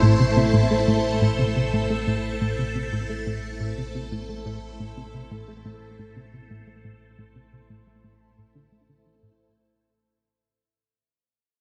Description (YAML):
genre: ambient, sequencer-driven space music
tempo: 88 BPM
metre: 4/4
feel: straight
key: A minor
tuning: A4 = 440 Hz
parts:
  - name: string machine, full ensemble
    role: sustained chords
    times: 0.0-9.4 s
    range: A3 to C5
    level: -28 LUFS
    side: equal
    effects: phaser, ensemble chorus
  - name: plucky analog bass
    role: riff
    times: 0.0-9.3 s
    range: A2 to A3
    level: -25 LUFS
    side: equal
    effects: ensemble chorus, analog delay
  - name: analog drone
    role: bass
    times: 0.0-9.4 s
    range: A1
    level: -35 LUFS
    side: equal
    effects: chorus
room: wet lush hall reverb, RT60 3.2 s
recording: none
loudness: -23 LUFS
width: mono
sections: 0.0-9.4 A section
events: fade-out 0.0-9.4; filter sweep on analog synth bass 0.0-9.4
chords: 0.0 Am